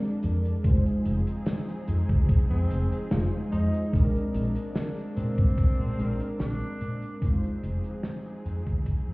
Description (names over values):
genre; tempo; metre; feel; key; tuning
vaporwave; 73 BPM; 4/4; straight; F dorian; A4 = 440 Hz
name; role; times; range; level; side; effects
warbly lo-fi synth keys; accompaniment; 0.0-9.1 s; Ab3 to C5; -32 LUFS; equal; ensemble chorus, vintage 12-bit sampler grit, tape echo
muted studio string section; sustained chords; 0.0-9.1 s; F3 to Ab4; -39 LUFS; equal; none
warm soul drum kit; drums; 0.0-9.0 s; hi-hat, snare drum; -33 LUFS; equal; none
woody fretless electric bass; bass; 0.2-9.1 s; F1 to Bb2; -27 LUFS; equal; lush chorus
electronic kick drum; drums; 0.6-9.0 s; none; -23 LUFS; equal; none
clear alto saxophone; melody; 2.5-7.3 s; C4 to Eb4; -38 LUFS; equal; tape echo
room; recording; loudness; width
studio reverb; heard muffled through a wall, stone room reverb, cassette tape, EQ; -24 LUFS; side -24 dB against mid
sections
0.0-9.1 A section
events
fade-out 5.0-9.1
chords
0.0 Bb9; 0.6 Fm7; 3.9 Bb9; 7.2 Fm7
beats
| 0.65 1.47 2.29 3.11 | 3.93 4.75 5.58 6.40 | 7.22 8.04 8.87